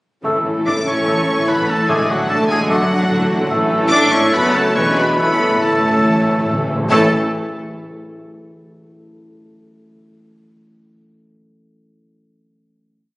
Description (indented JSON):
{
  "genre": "classical, dramatic, fast romantic movement for symphony orchestra",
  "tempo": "138-149 BPM",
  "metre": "4/4",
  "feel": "straight",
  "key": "A major",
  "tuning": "A4 = 440 Hz",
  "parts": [
    { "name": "clear clarinet", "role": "second line", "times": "0.2-7.1 s", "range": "A4 to D5", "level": "-27 LUFS", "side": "equal", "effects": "none" },
    { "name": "mellow hollow concert flute", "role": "second line", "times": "0.2-7.2 s", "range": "D6 to F#6", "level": "-24 LUFS", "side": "equal", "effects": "none" },
    { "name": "clear symphonic viola section", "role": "accompaniment", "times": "0.2-7.2 s", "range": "C#3 to B3", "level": "-25 LUFS", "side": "equal", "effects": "none" },
    { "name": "mellow bassoon", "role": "accompaniment", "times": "0.2-7.1 s", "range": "G#3 to A3", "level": "-25 LUFS", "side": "equal", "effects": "none" },
    { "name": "mellow French horn section", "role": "sustained chords", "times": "0.2-7.1 s", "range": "C#4 to F#4", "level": "-25 LUFS", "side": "left 1 dB", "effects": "none" },
    { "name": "concert harp", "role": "arpeggios", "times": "0.2-7.2 s", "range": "E2 to E5", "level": "-27 LUFS", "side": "left 1 dB", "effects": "none" },
    { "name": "mellow trumpet", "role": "stabs", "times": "0.2-7.1 s", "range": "A4 to B4", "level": "-25 LUFS", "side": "equal", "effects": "none" },
    { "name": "clear symphonic double bass section", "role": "bass", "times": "0.2-7.2 s", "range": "E1 to A1", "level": "-27 LUFS", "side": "equal", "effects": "none" },
    { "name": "timpani", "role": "percussion", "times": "0.2-7.1 s", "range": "A2", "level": "-27 LUFS", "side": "equal", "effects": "none" },
    { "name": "warm symphonic violin section", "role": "second line", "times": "0.3-7.2 s", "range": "C#4 to A4", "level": "-28 LUFS", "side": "left 1 dB", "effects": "none" },
    { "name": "clear trombone section", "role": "sustained chords", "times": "0.3-7.1 s", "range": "A2 to A3", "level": "-26 LUFS", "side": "right 1 dB", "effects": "none" },
    { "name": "rich symphonic violin section", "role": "melody", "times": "0.7-7.2 s", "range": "F#5 to D6", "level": "-23 LUFS", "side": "left 1 dB", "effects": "none" },
    { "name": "warm oboe", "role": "second line", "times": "0.7-7.1 s", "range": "F#4 to D5", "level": "-21 LUFS", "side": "equal", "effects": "none" },
    { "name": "rich symphonic cello section", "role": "bass", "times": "0.7-7.2 s", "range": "F#3 to D4", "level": "-21 LUFS", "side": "equal", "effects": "none" }
  ],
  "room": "wet scoring stage reverb, RT60 1.9 s",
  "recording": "recorded on a phone in the room, studio reverb, compression",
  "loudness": "-13 LUFS",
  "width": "side -20 dB against mid",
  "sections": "0.2-6.9 A section; 6.9-8.6 final chord",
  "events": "timpani fill 5.2-6.9",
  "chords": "0.2 A; 1.9 D/A; 3.5 A; 4.3 F#m; 4.8 E13; 5.2 A"
}